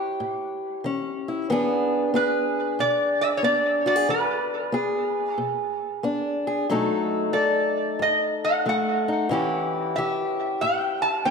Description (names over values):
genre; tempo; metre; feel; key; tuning
acoustic country blues, solo or duo; 92 BPM; 4/4; swing 65% on 8ths; E mixolydian; A4 = 436 Hz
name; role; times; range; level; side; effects
metal-body resonator slide guitar; melody; 0.0-11.3 s; B4 to A5; -24 LUFS; equal; wide subtle chorus, tape echo
fingerpicked acoustic archtop guitar; accompaniment; 0.0-11.3 s; F#2 to A4; -24 LUFS; left 1 dB; none
room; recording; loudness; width
wet lush hall reverb, RT60 2.3 s; dreamy mix soaked in reverb; -22 LUFS; side -5 dB against mid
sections
0.0-11.3 A section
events
none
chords
0.0 A7; 1.5 E7; 6.7 B7; 9.3 A7